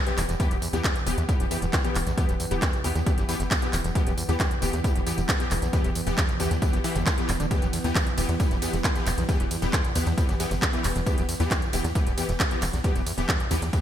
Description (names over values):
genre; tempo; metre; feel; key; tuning
driving peak-time techno; 135 BPM; 4/4; straight; E minor; A4 = 442 Hz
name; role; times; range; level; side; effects
metallic inharmonic drone; drone; 0.0-13.8 s; E3 to B3; -35 LUFS; right 2 dB; chorus, built-in reverb, sidechain pumping
screaming distorted acid line; riff; 0.1-13.8 s; E1 to E3; -32 LUFS; equal; distortion, chorus, vintage 12-bit sampler grit, sidechain pumping, digital delay
supersaw stab; stabs; 0.1-13.8 s; E3 to G4; -31 LUFS; left 2 dB; ensemble chorus, sidechain pumping, digital delay
techno drum kit; drums; 0.1-13.8 s; handclaps, hi-hat, ride cymbal, tambourine; -30 LUFS; equal; gated reverb
tight sequencer bass; bass; 0.2-13.7 s; E1 to E2; -29 LUFS; equal; sidechain pumping
dusty soul sampler-style drum kit; drums; 0.2-13.8 s; hi-hat, snare drum; -42 LUFS; left 1 dB; none
electronic kick drum; drums; 0.4-13.8 s; none; -26 LUFS; equal; none
room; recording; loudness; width
light reverb, digital ambience; bright 1980s-style digital production; -22 LUFS; side -10 dB against mid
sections
0.0-13.8 A section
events
none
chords
0.0 Em